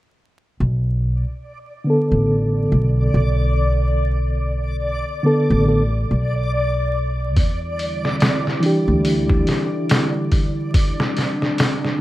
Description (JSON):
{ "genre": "trip hop", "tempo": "71 BPM", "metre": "4/4", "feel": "swing 58% on 16ths", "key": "unclear", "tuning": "A4 = 440 Hz", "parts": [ { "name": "upright bass", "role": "bass", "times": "0.6-9.4 s", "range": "A1 to E2", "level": "-19 LUFS", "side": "equal", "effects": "none" }, { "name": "backwards swelling texture", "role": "texture", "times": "1.5-12.0 s", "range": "D5", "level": "-28 LUFS", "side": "equal", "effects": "built-in reverb" }, { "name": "mellow reed electric piano", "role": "accompaniment", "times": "1.8-12.0 s", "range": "D3 to A4", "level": "-21 LUFS", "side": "equal", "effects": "fast tremolo, vintage 12-bit sampler grit, low-pass filter" }, { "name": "warbly tape-like pad", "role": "sustained chords", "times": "7.8-12.0 s", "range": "D3 to E4", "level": "-24 LUFS", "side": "equal", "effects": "chorus, built-in reverb" }, { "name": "trip hop sampler-style drum kit", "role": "drums", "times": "7.4-12.0 s", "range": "hi-hat, kick drum, snare drum", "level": "-19 LUFS", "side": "equal", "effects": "none" } ], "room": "little or no reverb", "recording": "rough home demo mix, vinyl crackle", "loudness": "-17 LUFS", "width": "side -16 dB against mid", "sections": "0.6-12.0 A section", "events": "filter sweep on reed electric piano 0.6-12.0", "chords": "0.6 Bm7; 7.4 Em7" }